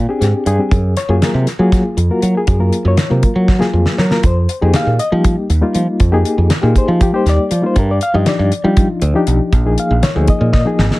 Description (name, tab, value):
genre	electric jazz fusion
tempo	238 BPM (eighths)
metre	7/8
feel	straight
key	Bb mixolydian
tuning	A4 = 438 Hz
part	fingered electric bass	bass	0.0-10.9 s	Ab1 to G3	-14 LUFS	equal	none
part	bright reed electric piano	accompaniment	0.1-11.0 s	F3 to F5	-16 LUFS	left 2 dB	fast tremolo
part	damped 70s drum kit	drums	0.2-11.0 s	hi-hat, kick drum, snare drum	-16 LUFS	equal	none
room	little or no reverb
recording	none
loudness	-11 LUFS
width	side -19 dB against mid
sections	0.0-11.0 A section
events	drum fill 3.5-4.2, 10.5-11.0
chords	0.0 Bb13 (rootless); 0.7 Gbmaj9; 4.2 Fm11; 7.8 Ebmaj9/G; 9.5 Bb7sus4